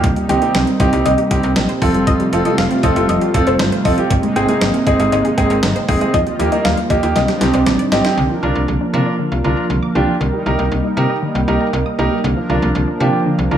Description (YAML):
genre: synth-pop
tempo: 118 BPM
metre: 4/4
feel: straight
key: unclear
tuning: A4 = 440 Hz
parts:
  - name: clear baby grand piano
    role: accompaniment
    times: 0.0-13.6 s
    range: Bb3 to Bb4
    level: -18 LUFS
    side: right 2 dB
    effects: none
  - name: brassy analog pad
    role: sustained chords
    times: 0.0-13.6 s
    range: C3 to Bb4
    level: -20 LUFS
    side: right 1 dB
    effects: chorus, tremolo
  - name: wide unison pluck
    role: arpeggios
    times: 0.0-13.6 s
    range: D3 to Eb6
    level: -23 LUFS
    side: left 1 dB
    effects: tape echo
  - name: slap-like FM bass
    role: bass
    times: 0.0-13.6 s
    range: F1 to C3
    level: -20 LUFS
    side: equal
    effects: none
  - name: clean 12-bit digital drum machine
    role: drums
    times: 0.0-8.2 s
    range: hi-hat, kick drum, snare drum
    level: -19 LUFS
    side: equal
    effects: none
  - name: soft round pluck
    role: second line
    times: 0.3-8.0 s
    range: C5 to G5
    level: -22 LUFS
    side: left 2 dB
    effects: chorus, tape echo
room: moderate lush hall reverb, RT60 1.7 s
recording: small room ambience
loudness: -13 LUFS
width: side -9 dB against mid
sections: 0.0-8.2 A section; 8.2-13.6 B section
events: drum fill 7.2-8.2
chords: 0.0 Cm7; 1.8 Fadd9; 4.1 Abadd9; 6.1 Ebadd9; 7.2 Cmadd9; 8.2 Bb/C; 10.2 Eb/C; 12.2 Bb/C